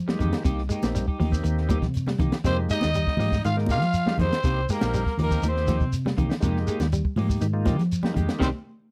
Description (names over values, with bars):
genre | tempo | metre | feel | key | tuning
afrobeat | 121 BPM | 4/4 | straight | F minor | A4 = 440 Hz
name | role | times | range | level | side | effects
hollow-body short-scale fingered electric bass | bass | 0.0-8.5 s | Bb1 to F3 | -28 LUFS | equal | none
bright tonewheel organ | accompaniment | 0.1-8.5 s | Ab3 to Bb4 | -36 LUFS | equal | overdrive, slow rotary speaker
clean electric guitar | arpeggios | 0.1-8.5 s | C3 to Ab3 | -34 LUFS | equal | none
compact cocktail drum kit | drums | 0.1-8.5 s | hi-hat, kick drum, snare drum | -30 LUFS | equal | none
congas | percussion | 0.1-8.5 s | none | -33 LUFS | equal | none
clean electric guitar | stabs | 0.2-8.5 s | Ab3 to G4 | -35 LUFS | equal | analog chorus
shekere | percussion | 0.2-8.5 s | none | -34 LUFS | equal | none
growling trumpet | melody | 2.5-8.5 s | Bb4 to F5 | -31 LUFS | equal | none
raspy tenor saxophone | second line | 2.5-8.5 s | Bb3 to F4 | -37 LUFS | equal | none
room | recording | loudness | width
little or no reverb | dry, close 1970s-style studio recording | -24 LUFS | mono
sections
0.0-8.9 A section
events
band accent 8.4-8.9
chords
0.5 Cm7; 2.4 Fm11; 4.4 Cm7; 6.4 Fm11; 8.4 N.C.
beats
| 0.46 0.95 1.45 1.95 | 2.44 2.94 3.44 3.94 | 4.43 4.93 5.43 5.92 | 6.42 6.92 7.42 7.91 | 8.41